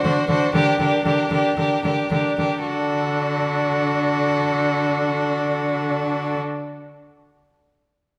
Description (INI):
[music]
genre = quick classical-period movement for string quartet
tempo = 112 BPM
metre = 4/4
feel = rubato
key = D major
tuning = A4 = 438 Hz
[part]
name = warm violin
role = melody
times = 0.0-6.4 s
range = A4 to C5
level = -32 LUFS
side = equal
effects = none
[part]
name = rich violin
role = second line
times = 0.0-6.4 s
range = F#4 to G4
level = -28 LUFS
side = equal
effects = none
[part]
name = rich viola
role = accompaniment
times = 0.0-6.4 s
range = D4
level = -25 LUFS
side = equal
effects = none
[part]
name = rich cello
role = bass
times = 0.0-6.4 s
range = D3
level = -26 LUFS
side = equal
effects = none
[sound]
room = wet scoring stage reverb, RT60 1.6 s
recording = none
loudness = -21 LUFS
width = mono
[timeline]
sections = 0.0-2.7 A section; 2.7-7.0 B section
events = slowing down 0.0-2.7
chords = 0.0 D7